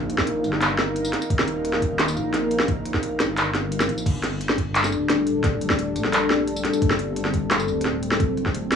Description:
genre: half-time drum and bass.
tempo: 174 BPM.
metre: 4/4.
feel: half-time.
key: G minor.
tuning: A4 = 441 Hz.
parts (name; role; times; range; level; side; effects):
dark analog pad; sustained chords; 0.0-8.8 s; G3 to F5; -25 LUFS; left 2 dB; chorus, sidechain pumping.
dark detuned saw bass; bass; 0.0-8.8 s; D1 to Bb1; -29 LUFS; equal; none.
organic electronic drum kit; drums; 0.1-8.8 s; crash cymbal, handclaps, hi-hat, snare drum, tambourine; -23 LUFS; equal; cassette tape.
electronic kick drum; drums; 0.2-8.5 s; none; -25 LUFS; equal; cassette tape.
room: moderate studio reverb, RT60 0.6 s.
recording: home recording on cassette, small room ambience.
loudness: -20 LUFS.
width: side -7 dB against mid.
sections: 0.0-4.1 A section; 4.1-8.8 A section.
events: drop 0.0-4.1, 4.1-8.8; kick drops out 3.7-4.1.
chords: 0.0 Ebadd9; 4.1 Gm.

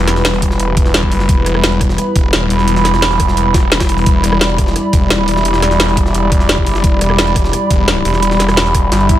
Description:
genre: dark technical drum and bass.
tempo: 173 BPM.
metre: 4/4.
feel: straight.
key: E minor.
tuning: A4 = 439 Hz.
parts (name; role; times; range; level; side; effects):
dark analog pad; sustained chords; 0.0-9.2 s; G3 to D5; -18 LUFS; left 3 dB; chorus, sidechain pumping.
snarling distorted saw bass; bass; 0.0-9.2 s; E1 to G1; -16 LUFS; equal; distortion, sidechain pumping.
warbly tape-like pad; texture; 0.0-9.2 s; B5; -19 LUFS; right 5 dB; chorus, built-in reverb, sidechain pumping.
drum and bass drum kit; drums; 0.1-9.2 s; hi-hat, rim click, snare drum; -16 LUFS; equal; overdrive.
jungle sampler-style drum kit; drums; 0.1-9.2 s; hi-hat, snare drum; -24 LUFS; right 1 dB; high-pass filter on hats, high-pass filter on snare, high-pass filter on room.
electronic kick drum; drums; 0.4-9.2 s; none; -14 LUFS; equal; overdrive.
swell; sound effects; 9.0-9.2 s; none; -21 LUFS; right 6 dB; none.
room: light reverb.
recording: none.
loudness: -10 LUFS.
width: side -13 dB against mid.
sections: 0.0-9.2 A section.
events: swell 9.0.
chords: 0.0 Em.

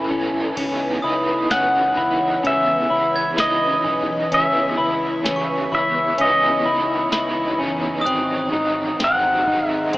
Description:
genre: dream pop.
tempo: 64 BPM.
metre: 4/4.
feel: straight.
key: C# minor.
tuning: A4 = 440 Hz.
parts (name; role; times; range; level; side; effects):
raw garage guitar; accompaniment; 0.0-10.0 s; G#2 to A4; -26 LUFS; right 1 dB; overdrive, tremolo, ensemble chorus.
ethereal airy pad; sustained chords; 0.0-10.0 s; D#3 to C#6; -28 LUFS; equal; ensemble chorus, built-in reverb, phaser.
semi-hollow electric guitar; arpeggios; 0.0-10.0 s; B#3 to E4; -23 LUFS; left 1 dB; lush chorus, digital delay.
vintage muted fingered electric bass; bass; 0.0-10.0 s; F#1 to C#2; -39 LUFS; equal; none.
booming analog drum machine; drums; 0.6-10.0 s; crash cymbal, hi-hat, kick drum, snare drum, tambourine; -26 LUFS; equal; none.
glockenspiel with brass mallets; texture; 1.0-8.5 s; C#6 to G#6; -29 LUFS; right 1 dB; digital delay.
pedal steel guitar; melody; 1.5-9.9 s; D#5 to F#5; -19 LUFS; equal; digital delay.
room: moderate huge ambient reverb, RT60 3.9 s.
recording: AM radio sound.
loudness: -17 LUFS.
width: side -18 dB against mid.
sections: 0.6-10.0 A section.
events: none.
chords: 0.0 F#m11; 0.6 C#m9; 8.1 G#7.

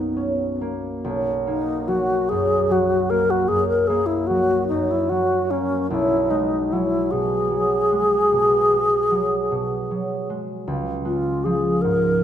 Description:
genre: classical, impressionist duo for alto flute and harp.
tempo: 43-53 BPM (dotted quarters).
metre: 12/8.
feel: rubato.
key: B major.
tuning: A4 = 441 Hz.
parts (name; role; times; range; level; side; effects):
wooden-headed alto flute; melody; 0.0-12.2 s; B3 to A#4; -20 LUFS; left 1 dB; none.
concert harp; accompaniment; 0.0-12.2 s; B1 to D#4; -23 LUFS; right 2 dB; none.
room: moderate recital hall reverb, RT60 1.6 s.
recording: none.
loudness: -19 LUFS.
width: side -10 dB against mid.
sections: 0.0-1.0 A section; 1.0-12.2 A section.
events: none.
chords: 0.0 Bmaj9; 5.9 B5; 10.7 C#.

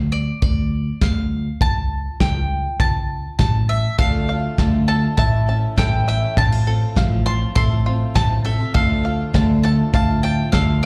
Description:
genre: indie folk with a building arrangement.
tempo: 101 BPM.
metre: 4/4.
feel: straight.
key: D minor.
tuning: A4 = 440 Hz.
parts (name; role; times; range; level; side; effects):
bowl-back mandolin; melody; 0.0-10.9 s; D5 to C6; -28 LUFS; equal; plate reverb, slapback echo.
upright bass; bass; 0.0-10.9 s; A1 to D2; -22 LUFS; equal; none.
soft brush drum kit; drums; 0.4-10.7 s; kick drum, snare drum; -22 LUFS; equal; none.
fingerpicked steel-string acoustic guitar; accompaniment; 4.0-10.9 s; D2 to F4; -30 LUFS; equal; none.
picked twelve-string acoustic guitar; accompaniment; 4.0-10.9 s; A2 to A4; -35 LUFS; equal; plate reverb, slapback echo.
bluegrass banjo; arpeggios; 4.0-10.9 s; F4 to A5; -32 LUFS; equal; plate reverb, slapback echo.
room: light reverb.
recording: live gig heard through the venue's PA, club reverb.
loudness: -19 LUFS.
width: mono.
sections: 0.0-10.9 A section.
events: none.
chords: 0.0 Dm; 1.6 A/C#; 4.0 Dm; 5.2 A; 6.4 F/A; 8.8 Dm.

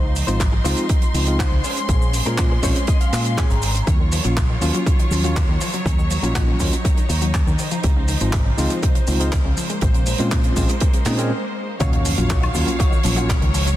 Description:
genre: nu-disco, nu disco.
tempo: 121 BPM.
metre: 4/4.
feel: straight.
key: Eb dorian.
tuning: A4 = 440 Hz.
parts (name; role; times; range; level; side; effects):
rich symphonic string section; sustained chords; 0.0-13.8 s; F3 to C6; -28 LUFS; equal; sidechain pumping.
direct-recorded clean electric guitar; riff; 0.0-3.8, 11.8-13.4 s; Db4 to Bb5; -29 LUFS; left 2 dB; ensemble chorus, slapback echo.
picked electric bass with an envelope filter; bass; 0.0-13.7 s; Ab1 to Bb2; -21 LUFS; equal; none.
damped 70s drum kit; drums; 0.2-13.8 s; handclaps, hi-hat, shaker, woodblock; -27 LUFS; right 2 dB; small room ambience.
egg shaker; percussion; 0.2-13.8 s; none; -38 LUFS; right 4 dB; none.
tine electric piano; accompaniment; 0.3-13.3 s; Gb3 to F5; -25 LUFS; equal; medium tremolo, sidechain pumping, slapback echo.
electronic kick drum; drums; 0.4-13.4 s; none; -19 LUFS; equal; overdrive, small room ambience.
wide unison pluck; arpeggios; 3.9-13.7 s; C3 to C4; -29 LUFS; left 3 dB; sidechain pumping, tape echo.
sub drop; sound effects; 11.8-13.8 s; none; -29 LUFS; equal; none.
room: light reverb.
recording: dense, heavily limited modern master.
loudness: -16 LUFS.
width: side -14 dB against mid.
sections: 0.0-11.8 A section; 11.8-13.8 B section.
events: clean electric guitar fill 2.4-3.9; break 11.3-11.8; drop 11.8-13.8; impact 11.8-13.8.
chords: 0.0 Dbmaj9; 1.6 Bbm9; 3.9 Ebm9; 7.6 Dbmaj9; 9.6 Bbm9; 11.8 Ebm9.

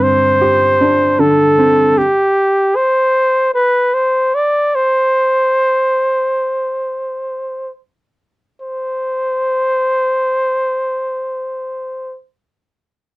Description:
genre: pop.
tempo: free time.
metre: none.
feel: none.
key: unclear.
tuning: A4 = 440 Hz.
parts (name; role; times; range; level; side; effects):
warm flugelhorn; melody; 0.0-12.2 s; G4 to D5; -13 LUFS; equal; none.
clear baby grand piano; accompaniment; 0.0-2.0 s; G2 to G4; -15 LUFS; right 1 dB; none.
room: light reverb.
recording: dry, close 1970s-style studio recording.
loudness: -12 LUFS.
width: side -20 dB against mid.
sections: 0.0-8.6 A section; 8.6-12.3 B section.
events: slowing down 2.0-8.6.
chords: 0.0 Gsus4; 2.0 N.C..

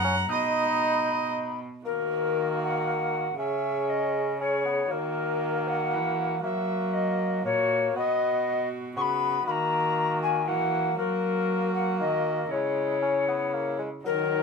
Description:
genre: classical, renaissance-style consort dance.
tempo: 118 BPM.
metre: 3/4.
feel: straight.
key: unclear.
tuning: A4 = 441 Hz.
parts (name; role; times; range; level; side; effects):
mellow alto recorder; melody; 0.0-14.4 s; A#4 to C#6; -27 LUFS; left 4 dB; none.
warm viola; second line; 0.0-14.4 s; D#4 to F#5; -32 LUFS; right 4 dB; none.
clear bassoon; accompaniment; 0.0-14.4 s; F#3 to D#4; -32 LUFS; equal; none.
rich cello; bass; 0.0-14.4 s; F#2 to F#3; -33 LUFS; right 2 dB; none.
room: moderate stone room reverb, RT60 0.9 s.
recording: minimal, uncompressed stereo recording.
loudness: -24 LUFS.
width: side -5 dB against mid.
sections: 0.0-1.8 A section; 1.8-14.0 B section.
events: none.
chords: 0.3 B; 1.8 D#m; 3.4 C#m; 4.9 D#m; 6.4 F#; 7.9 B; 9.5 D#m; 11.0 F#; 12.5 C#m.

